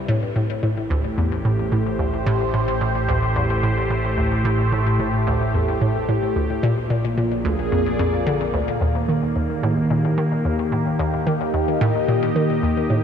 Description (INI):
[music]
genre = ambient, sequencer-driven space music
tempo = 110 BPM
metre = 4/4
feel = straight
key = Eb lydian from 8.8 s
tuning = A4 = 439 Hz
[part]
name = phased analog pad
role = sustained chords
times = 0.0-13.0 s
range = A2 to Eb5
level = -21 LUFS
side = equal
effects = phaser, chorus
[part]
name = analog drone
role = bass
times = 0.0-8.8 s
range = A1 to Bb1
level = -31 LUFS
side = equal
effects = chorus
[part]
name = hollow square pluck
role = riff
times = 0.1-13.0 s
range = D2 to Eb3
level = -22 LUFS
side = equal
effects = chorus, ping-pong delay
[sound]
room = moderate huge ambient reverb, RT60 7.5 s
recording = dreamy mix soaked in reverb, cassette tape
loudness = -18 LUFS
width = side -8 dB against mid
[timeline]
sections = 0.0-8.8 A section; 8.8-13.0 B section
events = none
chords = 0.1 Am7; 6.6 Bb7; 8.8 Eb